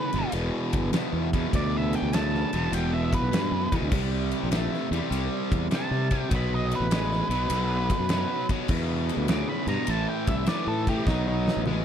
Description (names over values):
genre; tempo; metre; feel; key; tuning
blues rock power trio and southern rock; 100 BPM; 4/4; swing 67% on 8ths; E minor; A4 = 441 Hz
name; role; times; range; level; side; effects
octave-fuzz lead guitar; melody; 0.0-11.6 s; D#4 to D6; -32 LUFS; right 2 dB; distortion
distorted electric guitar; riff; 0.0-11.8 s; E2 to A3; -28 LUFS; equal; overdrive
fuzz fingered electric bass; bass; 0.1-11.8 s; E1 to C3; -28 LUFS; equal; overdrive
huge arena drum kit; drums; 0.1-11.8 s; crash cymbal, kick drum, ride cymbal, snare drum, toms; -30 LUFS; equal; none
room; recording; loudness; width
little or no reverb; none; -24 LUFS; side -9 dB against mid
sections
0.0-11.8 A section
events
lead electric guitar solo 0.0-11.8; drum fill 11.1-11.8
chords
0.0 E7(no3); 3.9 C5; 6.3 B5; 8.7 E7(no3); 9.9 Am; 11.1 B5